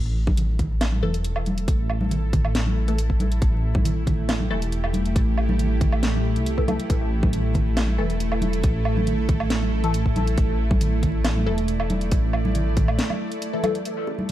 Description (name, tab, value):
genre	deep dubstep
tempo	138 BPM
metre	4/4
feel	half-time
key	unclear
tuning	A4 = 442 Hz
part	bowed-like drone	sustained chords	1.0-14.3 s	A3 to D5	-29 LUFS	right 2 dB	built-in reverb
part	dark detuned saw bass	bass	0.0-13.0 s	E1 to C2	-23 LUFS	equal	none
part	electronic kick drum	drums	0.3-12.9 s	none	-22 LUFS	equal	none
part	congas and bongos	percussion	0.3-14.3 s	none	-30 LUFS	equal	dub echo
part	garage drum kit	drums	0.4-14.3 s	hi-hat, snare drum, woodblock	-29 LUFS	right 1 dB	none
part	filtered dub chord stab	stabs	1.0-13.8 s	E3 to A4	-30 LUFS	left 3 dB	phaser, analog chorus, cassette tape, dub echo
room	light reverb, digital ambience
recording	dark, warm production, vinyl crackle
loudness	-20 LUFS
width	side -13 dB against mid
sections	0.0-13.9 A section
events	break 13.0-13.9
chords	0.0 A5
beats	0.38 0.81 1.25 | 1.68 2.12 2.55 2.98 | 3.42 3.85 4.29 4.72 | 5.16 5.59 6.03 6.46 | 6.90 7.33 7.77 8.20 | 8.64 9.07 9.51 9.94 | 10.38 10.81 11.25 11.68 | 12.12 12.55 12.98 13.42 | 13.86 14.29